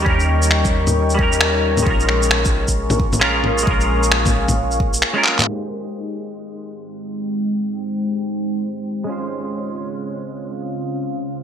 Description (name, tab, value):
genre	future garage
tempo	133 BPM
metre	4/4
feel	swing 62% on 16ths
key	unclear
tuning	A4 = 440 Hz
part	semi-hollow electric guitar	accompaniment	0.0-11.4 s	G3 to C5	-23 LUFS	right 2 dB	ensemble chorus, sidechain pumping, digital delay
part	deep dark ambient pad	sustained chords	0.0-11.4 s	Db3 to Db6	-23 LUFS	left 2 dB	chorus, built-in reverb, sidechain pumping
part	soft 808-style bass	bass	0.0-5.0 s	Bb1 to Eb2	-21 LUFS	equal	tube saturation, sidechain pumping
part	electronic kick drum	drums	0.1-4.9 s	none	-20 LUFS	equal	small room reverb
part	electronic shaker, finger snaps, bongos and handclaps	drums	0.2-5.5 s	none	-19 LUFS	left 1 dB	small room reverb, gated reverb
room	wet lush hall reverb, RT60 1.6 s, digital ambience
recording	bright 1980s-style digital production, low-pass filter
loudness	-16 LUFS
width	side -8 dB against mid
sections	0.0-5.5 A section; 5.5-11.4 B section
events	drum fill 5.2; band accent 5.4; filter sweep on ambient pad 5.5-11.4; filter sweep 5.5-11.4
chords	0.0 Eb7; 1.9 Bbm7; 5.5 Abmaj7; 9.1 Dbmaj7